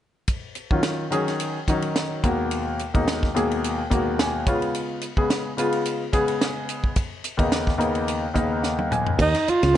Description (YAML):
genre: electric jazz fusion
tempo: 108 BPM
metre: 4/4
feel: swing 54% on 16ths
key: Eb minor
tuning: A4 = 441 Hz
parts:
  - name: tight funk drum kit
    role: drums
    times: 0.3-9.7 s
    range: crash cymbal, hi-hat, kick drum, ride cymbal, snare drum, toms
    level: -26 LUFS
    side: equal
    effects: none
  - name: warm concert grand piano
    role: accompaniment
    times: 0.7-9.8 s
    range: Eb2 to Ab5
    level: -23 LUFS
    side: left 1 dB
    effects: none
  - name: breathy tenor saxophone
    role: melody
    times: 9.2-9.8 s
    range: Eb4 to F4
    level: -19 LUFS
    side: right 3 dB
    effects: slapback echo
  - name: woody fretless electric bass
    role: bass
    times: 9.2-9.7 s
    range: Db2 to Eb2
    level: -21 LUFS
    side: equal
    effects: none
room: light reverb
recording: nothing above 11.0 kHz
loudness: -21 LUFS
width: side -11 dB against mid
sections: 0.3-9.2 A section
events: grand piano fill 3.9-4.7, 8.1-9.2; drum fill 8.6-9.2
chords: 0.3 Ebm9; 2.2 Abm9/Eb; 4.5 Db7; 7.0 Bmaj9/D#; 9.2 Eb7sus2